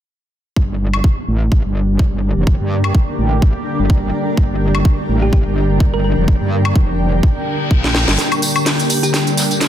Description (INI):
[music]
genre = bass house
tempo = 126 BPM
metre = 4/4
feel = swing 56% on 16ths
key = G minor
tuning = A4 = 439 Hz
[part]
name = sweeping resonant pad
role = sustained chords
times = 0.6-9.7 s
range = D3 to G4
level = -22 LUFS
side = left 2 dB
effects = chorus, sidechain pumping
[part]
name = metallic wobble bass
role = bass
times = 0.6-8.2 s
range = F1 to G2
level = -17 LUFS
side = equal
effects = chorus, sidechain pumping
[part]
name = electronic kick drum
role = drums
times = 0.6-7.8 s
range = none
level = -16 LUFS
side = equal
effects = none
[part]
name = granular cloud pad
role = texture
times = 1.8-9.7 s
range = D4 to G5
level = -23 LUFS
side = right 1 dB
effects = built-in reverb, sidechain pumping
[part]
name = garage drum kit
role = drums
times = 0.9-9.7 s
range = hi-hat, snare drum, tambourine, woodblock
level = -18 LUFS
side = equal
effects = none
[part]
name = thumb-piano-like synth pluck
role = melody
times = 5.2-6.1, 9.0-9.2 s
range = G4 to Bb4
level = -24 LUFS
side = right 1 dB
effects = chorus, tape echo
[part]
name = reverse cymbal and riser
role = sound effects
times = 7.4-9.7 s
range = none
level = -26 LUFS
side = left 3 dB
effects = none
[part]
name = vintage brush drum kit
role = drums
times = 8.2-9.7 s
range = hi-hat, snare drum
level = -25 LUFS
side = right 3 dB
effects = high-pass filter on hats, high-pass filter on snare, high-pass filter on room
[sound]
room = light reverb, digital ambience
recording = dense, heavily limited modern master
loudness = -13 LUFS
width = side -11 dB against mid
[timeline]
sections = 0.6-8.2 A section; 8.2-9.7 B section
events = reverse cymbal 7.4-8.2; drum fill 7.8-8.2, 8.2-9.7; build-up 8.2-9.7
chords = 0.6 Gm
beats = | 0.57 1.04 1.52 1.99 | 2.47 2.95 3.42 3.90 | 4.38 4.85 5.33 5.80 | 6.28 6.76 7.23 7.71 | 8.19 8.66 9.14 9.61